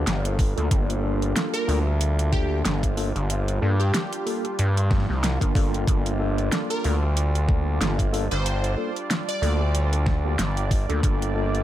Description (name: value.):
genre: glitch hop.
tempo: 93 BPM.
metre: 4/4.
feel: swing 56% on 16ths.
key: G minor.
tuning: A4 = 440 Hz.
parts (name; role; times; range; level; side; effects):
warm analog pad; sustained chords; 0.0-11.6 s; G3 to D5; -33 LUFS; right 3 dB; chorus, sidechain pumping.
gritty driven synth bass; bass; 0.0-11.6 s; G1 to G2; -23 LUFS; equal; tube saturation.
pop drum kit; drums; 0.1-11.6 s; hi-hat, rim click, snare drum; -29 LUFS; equal; overdrive.
electronic kick drum; drums; 0.4-11.2 s; none; -22 LUFS; equal; overdrive.
mellow tine electric piano; stabs; 0.6-11.6 s; Bb3 to Bb4; -31 LUFS; left 1 dB; medium stereo tremolo, vintage 12-bit sampler grit, sidechain pumping, dub echo.
plucky unison lead; melody; 1.5-9.9 s; G4 to D5; -32 LUFS; equal; dub echo.
room: little or no reverb.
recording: none.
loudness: -21 LUFS.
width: side -13 dB against mid.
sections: 0.0-11.6 A section.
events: none.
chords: 0.0 Gm7.